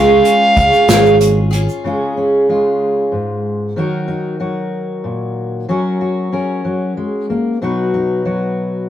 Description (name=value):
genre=indie folk with a building arrangement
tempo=62 BPM (dotted quarters)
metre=6/8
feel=straight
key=Db mixolydian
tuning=A4 = 440 Hz
part: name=bright reedy soprano recorder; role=melody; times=0.0-1.2 s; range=F5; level=-12 LUFS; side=equal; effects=none
part: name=picked twelve-string acoustic guitar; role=accompaniment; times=0.0-1.9 s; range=Db3 to Ab4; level=-12 LUFS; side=right 2 dB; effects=none
part: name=picked electric bass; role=bass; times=0.0-1.7 s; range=Ab1 to Db2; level=-17 LUFS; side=equal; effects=none
part: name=tube shaker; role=percussion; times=0.2-1.8 s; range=none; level=-31 LUFS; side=right 6 dB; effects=none
part: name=unplugged drum kit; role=drums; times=0.3-1.7 s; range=hi-hat, kick drum, snare drum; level=-17 LUFS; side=equal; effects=none
part: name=fingerpicked steel-string acoustic guitar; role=accompaniment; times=1.8-8.9 s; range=Ab2 to Cb5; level=-16 LUFS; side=left 1 dB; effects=none
room=moderate small room reverb, RT60 0.5 s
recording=rough rehearsal-room recording, tube saturation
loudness=-13 LUFS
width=side -11 dB against mid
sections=0.0-1.8 A section; 1.8-8.9 B section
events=none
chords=0.0 Db; 3.8 Ebm; 5.7 Gb; 7.6 Cb